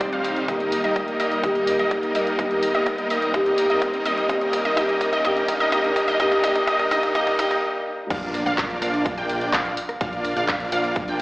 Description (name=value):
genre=EDM, festival progressive house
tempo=126 BPM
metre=4/4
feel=straight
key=Eb major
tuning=A4 = 443 Hz
part: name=felt-muted upright piano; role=accompaniment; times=0.0-8.1 s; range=Eb3 to G4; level=-24 LUFS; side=equal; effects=vintage 12-bit sampler grit, sidechain pumping, digital delay
part: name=wide unison pluck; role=arpeggios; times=0.0-11.2 s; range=Eb5 to G5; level=-26 LUFS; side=equal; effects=sidechain pumping, digital delay
part: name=dense compressed supersaw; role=riff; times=0.0-11.2 s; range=G3 to G5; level=-24 LUFS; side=equal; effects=cassette tape, sidechain pumping, digital delay
part: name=big-room dance drum kit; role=drums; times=0.0-11.2 s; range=crash cymbal, handclaps, hi-hat, rim click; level=-30 LUFS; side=equal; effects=overdrive
part: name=electronic kick drum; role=drums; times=0.0-11.1 s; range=none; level=-28 LUFS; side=equal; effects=overdrive, high-pass filter on kick
part: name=riser and impact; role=sound effects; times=0.0-10.0 s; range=none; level=-34 LUFS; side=equal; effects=none
part: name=fat analog bass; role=bass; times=8.1-11.2 s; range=Bb1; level=-30 LUFS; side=equal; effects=sidechain pumping
room=wet recital hall reverb, RT60 1.5 s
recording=played on a big sound system in a bare room, large studio reverb, high-pass filter, AM radio sound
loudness=-19 LUFS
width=side -21 dB against mid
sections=0.0-8.1 A section; 8.1-11.2 B section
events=build-up 0.0-8.1; drum fill 0.5-7.6; stop 7.6-8.1; drop 8.1-11.2; impact 8.1-10.0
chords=0.5 Eb; 8.1 Bb